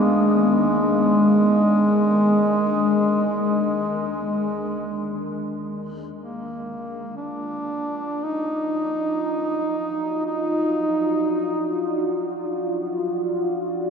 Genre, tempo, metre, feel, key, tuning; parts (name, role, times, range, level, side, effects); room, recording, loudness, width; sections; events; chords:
ambient; free time; Eb harmonic minor; A4 = 440 Hz
mellow duduk; melody; 0.0-11.8 s; Ab3 to Eb4; -21 LUFS; equal; ping-pong delay
deep dark ambient pad; sustained chords; 0.0-13.9 s; Eb3 to D5; -27 LUFS; equal; chorus, built-in reverb
wet huge ambient reverb, RT60 8.0 s; dark, warm production; -20 LUFS; side -6 dB against mid
0.0-6.2 A section; 6.2-13.9 B section
fade-in on ambient pad 6.2-13.9; fade-in on duduk 6.2-13.9
0.0 Absus2/Eb; 6.2 Ebmadd9